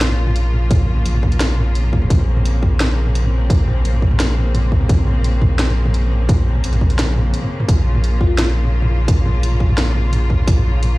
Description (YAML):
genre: half-time drum and bass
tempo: 172 BPM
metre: 4/4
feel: half-time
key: Bb minor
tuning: A4 = 440 Hz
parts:
  - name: clear symphonic string section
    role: sustained chords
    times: 0.0-11.0 s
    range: Db3 to F4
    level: -24 LUFS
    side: left 1 dB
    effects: sidechain pumping
  - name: saturated sub bass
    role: bass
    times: 0.0-11.0 s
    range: F1 to Bb1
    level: -16 LUFS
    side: equal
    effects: none
  - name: drum and bass drum kit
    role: drums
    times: 0.0-10.9 s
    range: hi-hat, snare drum, toms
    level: -22 LUFS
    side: equal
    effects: none
  - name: electronic kick drum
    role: drums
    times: 0.7-10.5 s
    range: none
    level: -15 LUFS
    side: equal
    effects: none
  - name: bell-like FM electric piano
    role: melody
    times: 8.2-8.5 s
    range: F4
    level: -28 LUFS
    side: left 3 dB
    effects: chorus, phaser, digital delay
room: little or no reverb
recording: played on a big sound system in a bare room, large studio reverb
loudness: -14 LUFS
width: side -20 dB against mid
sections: 0.0-11.0 A section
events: break 7.3-7.7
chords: 0.0 Bbm